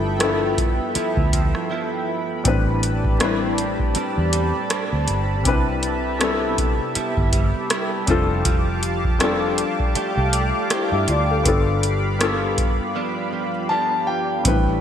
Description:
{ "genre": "contemporary R&B", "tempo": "80 BPM", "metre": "4/4", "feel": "swing 58% on 16ths", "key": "unclear", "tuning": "A4 = 438 Hz", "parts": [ { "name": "felt-muted upright piano", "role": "accompaniment", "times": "0.0-14.8 s", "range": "F3 to F5", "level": "-25 LUFS", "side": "left 5 dB", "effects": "lush chorus" }, { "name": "chorused pulse-width pad", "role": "sustained chords", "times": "0.0-14.8 s", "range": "G4 to D6", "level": "-26 LUFS", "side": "left 1 dB", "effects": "sidechain pumping" }, { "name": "direct-recorded clean electric guitar", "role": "arpeggios", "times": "0.0-14.8 s", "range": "G2 to G4", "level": "-28 LUFS", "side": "right 6 dB", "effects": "ensemble chorus, digital delay" }, { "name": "vintage muted fingered electric bass", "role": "bass", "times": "0.0-14.8 s", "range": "F1 to G2", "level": "-24 LUFS", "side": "equal", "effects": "none" }, { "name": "booming analog drum machine", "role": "drums", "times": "0.2-14.7 s", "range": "hi-hat, kick drum, rim click", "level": "-22 LUFS", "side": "equal", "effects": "gated reverb" }, { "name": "warm grand piano", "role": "melody", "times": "13.7-14.8 s", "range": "G5 to A5", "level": "-22 LUFS", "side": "left 1 dB", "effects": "lush chorus, digital delay" } ], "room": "moderate lush hall reverb, RT60 2.9 s", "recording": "bright 1980s-style digital production", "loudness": "-18 LUFS", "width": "side -9 dB against mid", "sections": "0.0-14.5 A section", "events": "break 1.7-2.5, 13.0-14.5", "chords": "0.0 G13; 2.5 Am11; 8.1 F69; 11.5 G7", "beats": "0.20 0.95 1.70 | 2.45 3.20 3.95 4.70 | 5.45 6.20 6.95 7.70 | 8.45 9.20 9.95 10.70 | 11.45 12.20 12.95 13.70 | 14.45" }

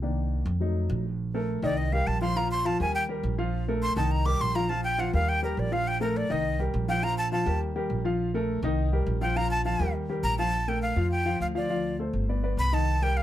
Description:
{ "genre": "Afro-Cuban jazz", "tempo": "206 BPM", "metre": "4/4", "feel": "straight", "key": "Bb major", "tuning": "A4 = 440 Hz", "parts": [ { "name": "warm baby grand piano", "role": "accompaniment", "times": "0.0-13.2 s", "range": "Eb3 to F5", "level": "-30 LUFS", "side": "left 2 dB", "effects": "none" }, { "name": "upright bass", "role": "bass", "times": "0.0-13.2 s", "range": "G1 to F2", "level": "-28 LUFS", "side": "right 1 dB", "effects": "none" }, { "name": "breathy bright jazz flute", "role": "melody", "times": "1.6-13.2 s", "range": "Bb4 to D6", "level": "-29 LUFS", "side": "equal", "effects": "none" } ], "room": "moderate studio reverb, RT60 0.5 s", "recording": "dark, warm production", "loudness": "-25 LUFS", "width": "side -12 dB against mid", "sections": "0.0-1.2 A section; 1.2-10.5 A section; 10.5-13.2 B section", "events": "grand piano solo 0.0-1.2; flute solo 1.2-10.5", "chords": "0.0 Cm9; 0.6 F7b9; 1.2 Cm13/Bb; 1.8 Cm7; 2.4 Bb5; 4.1 Cm7; 4.7 Bb5; 6.4 Cm7; 7.0 Bb5; 8.8 Cm7; 9.4 Bb5; 10.5 Bbmaj7; 11.7 Dm7; 12.3 G", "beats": "| 0.03 0.32 0.61 0.90 | 1.20 1.49 1.78 2.07 | 2.36 2.65 2.94 3.24 | 3.53 3.82 4.11 4.40 | 4.70 4.99 5.28 5.57 | 5.86 6.15 6.45 6.74 | 7.03 7.32 7.61 7.90 | 8.20 8.49 8.78 9.07 | 9.36 9.65 9.95 10.24 | 10.53 10.82 11.12 11.41 | 11.70 11.99 12.29 12.58 | 12.87 13.16" }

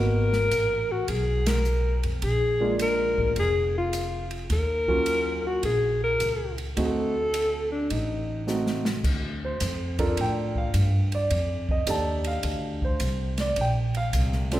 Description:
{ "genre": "jazz, small-group swing and bop", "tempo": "106 BPM", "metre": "4/4", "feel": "swing 68% on 8ths", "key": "G minor from 9.0 s", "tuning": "A4 = 439 Hz", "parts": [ { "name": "mellow alto saxophone", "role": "melody", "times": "0.0-8.5 s", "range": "D4 to Bb4", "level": "-25 LUFS", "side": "left 2 dB", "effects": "none" }, { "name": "dark grand piano", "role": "accompaniment", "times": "0.0-14.6 s", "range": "Gb3 to A5", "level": "-29 LUFS", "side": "right 2 dB", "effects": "none" }, { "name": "upright bass", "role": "bass", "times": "0.0-14.6 s", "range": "F1 to A2", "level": "-27 LUFS", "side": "equal", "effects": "none" }, { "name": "open jazz drum kit", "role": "drums", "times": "0.3-14.6 s", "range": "crash cymbal, hi-hat, kick drum, ride cymbal, snare drum", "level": "-32 LUFS", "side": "equal", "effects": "none" } ], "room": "moderate concert hall reverb, RT60 2.3 s", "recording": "recorded in a church or concert hall", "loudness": "-23 LUFS", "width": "side -14 dB against mid", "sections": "0.0-9.0 A section; 9.0-14.6 B section", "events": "band accent 1.4; drum fill 8.5-9.0", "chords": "0.0 Abm9; 2.2 Bb7; 4.5 Ebm7; 6.8 D7b9; 9.0 Gm9; 11.3 F13; 13.6 Bb5", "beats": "0.52 1.09 1.66 | 2.23 2.79 3.36 3.93 | 4.50 5.07 5.64 6.21 | 6.77 7.34 7.91 8.47 | 9.04 9.61 10.18 10.74 | 11.31 11.87 12.44 13.01 | 13.57 14.13" }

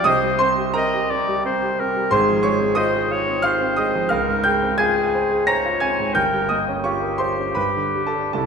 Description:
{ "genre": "classical, romantic duo for clarinet and grand piano", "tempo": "71-93 BPM", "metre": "3/4", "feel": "rubato", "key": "unclear", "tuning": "A4 = 440 Hz", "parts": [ { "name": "bright clarinet", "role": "melody", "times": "0.0-8.5 s", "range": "E4 to Eb5", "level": "-22 LUFS", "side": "left 4 dB", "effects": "none" }, { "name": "clear concert grand piano", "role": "accompaniment", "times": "0.0-8.5 s", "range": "G1 to Bb6", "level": "-19 LUFS", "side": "right 2 dB", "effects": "none" } ], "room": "wet concert hall reverb, RT60 2.0 s", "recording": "minimal, uncompressed stereo recording", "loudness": "-18 LUFS", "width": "side -6 dB against mid", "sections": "0.0-8.5 A section", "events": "none", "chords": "0.1 Cm; 2.1 Fm/Ab; 4.1 Dbmaj7; 6.2 Gm7b5; 7.6 G", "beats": "| 0.07 0.76 1.46 | 2.13 2.78 3.45 | 4.11 4.79 5.47 | 6.15 6.84 7.55 | 8.35" }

